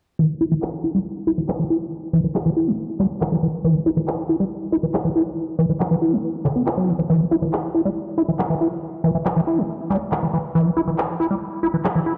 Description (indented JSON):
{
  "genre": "psychedelic trance",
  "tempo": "139 BPM",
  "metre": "4/4",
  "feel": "straight",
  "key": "E minor",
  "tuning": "A4 = 440 Hz",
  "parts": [
    { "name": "liquid acid bass", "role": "riff", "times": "0.2-12.1 s", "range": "D3 to E4", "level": "-22 LUFS", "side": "equal", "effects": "chorus, cassette tape, dub echo" },
    { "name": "electronic handclaps", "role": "drums", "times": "0.6-11.9 s", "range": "none", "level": "-31 LUFS", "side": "equal", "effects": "none" }
  ],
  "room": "wet lush hall reverb, RT60 2.2 s",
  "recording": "played on a big sound system in a bare room, large studio reverb, low-pass filter",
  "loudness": "-21 LUFS",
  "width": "mono",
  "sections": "0.2-12.2 A section",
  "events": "filter sweep on acid bass 0.2-12.2; filter sweep 0.2-12.2",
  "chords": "none"
}